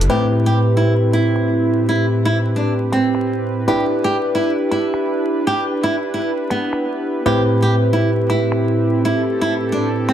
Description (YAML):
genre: UK garage, two-step garage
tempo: 134 BPM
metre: 4/4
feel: swing 63% on 16ths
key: A minor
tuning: A4 = 439 Hz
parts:
  - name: flamenco guitar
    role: melody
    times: 0.0-10.1 s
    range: B3 to G4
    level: -20 LUFS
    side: right 2 dB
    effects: dub echo
  - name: warm analog pad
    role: sustained chords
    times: 0.0-10.1 s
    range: A2 to B4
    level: -22 LUFS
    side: right 1 dB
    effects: chorus
  - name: punchy analog drum machine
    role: drums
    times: 0.0-10.1 s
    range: finger snaps, hi-hat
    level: -29 LUFS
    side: equal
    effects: low-pass filter on hats, low-pass filter on snare
  - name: FM electric piano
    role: stabs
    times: 0.1-10.1 s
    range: A2 to B4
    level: -19 LUFS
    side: left 1 dB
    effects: chorus, phaser, low-pass filter
room: moderate digital room reverb, RT60 1.1 s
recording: dense, heavily limited modern master, vinyl crackle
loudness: -15 LUFS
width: side -10 dB against mid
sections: 0.1-10.1 A section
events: none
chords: 0.1 Am9; 3.7 Em7; 7.3 Am9